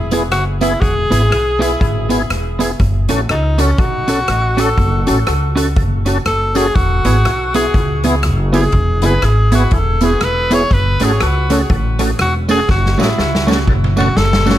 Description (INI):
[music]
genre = ska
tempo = 121 BPM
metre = 4/4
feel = swing 60% on 8ths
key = F# minor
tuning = A4 = 444 Hz
[part]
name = breathy tenor saxophone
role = melody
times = 0.0-14.6 s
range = C#4 to C#5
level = -18 LUFS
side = equal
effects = tape echo, plate reverb
[part]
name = upright bass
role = bass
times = 0.0-14.6 s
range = E1 to C#2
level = -16 LUFS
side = equal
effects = none
[part]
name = electric guitar at the edge of break-up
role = accompaniment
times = 0.1-14.6 s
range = A3 to A4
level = -20 LUFS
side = right 3 dB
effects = spring reverb, tape echo, plate reverb
[part]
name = tonewheel organ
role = stabs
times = 0.1-14.6 s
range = B3 to A4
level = -22 LUFS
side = left 3 dB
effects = overdrive, chorus vibrato, slow rotary speaker, plate reverb
[part]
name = street-band drum kit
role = drums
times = 0.1-14.6 s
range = hi-hat, kick drum, rim click, snare drum, toms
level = -19 LUFS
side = equal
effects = tape echo
[part]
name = tambourine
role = percussion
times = 0.1-14.6 s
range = none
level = -34 LUFS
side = right 11 dB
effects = tape echo
[sound]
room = light reverb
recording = none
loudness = -12 LUFS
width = side -12 dB against mid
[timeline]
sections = 0.0-14.6 A section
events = tenor saxophone solo 0.0-14.6; drum fill 12.7-14.6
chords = 0.0 E; 2.8 F#m; 6.8 E; 10.7 F#m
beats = 0.32 | 0.82 1.31 1.81 2.31 | 2.80 3.30 3.79 4.29 | 4.78 5.28 5.77 6.27 | 6.76 7.26 7.75 8.24 | 8.74 9.23 9.72 10.22 | 10.71 11.21 11.70 12.19 | 12.68 13.18 13.67 14.16